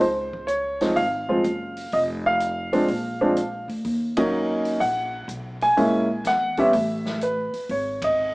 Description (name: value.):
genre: jazz piano trio.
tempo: 125 BPM.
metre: 4/4.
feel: swing 68% on 8ths.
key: unclear.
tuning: A4 = 442 Hz.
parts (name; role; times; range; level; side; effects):
warm upright piano; melody; 0.0-8.3 s; E#3 to G#5; -21 LUFS; equal; none.
upright bass; bass; 0.0-8.3 s; F1 to E2; -31 LUFS; equal; none.
open jazz drum kit; drums; 0.0-8.1 s; hi-hat, kick drum, ride cymbal, snare drum; -38 LUFS; left 1 dB; none.
room: moderate large studio reverb, RT60 1.3 s.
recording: band playing live in one room, small speaker sound.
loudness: -21 LUFS.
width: side -24 dB against mid.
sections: 0.0-8.3 A section.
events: band accent 4.1, 7.9.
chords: 0.0 C#maj7; 1.9 N.C.; 2.9 A#; 3.8 D#m7; 5.8 A#m7b5; 6.7 Asus2; 7.7 G#5.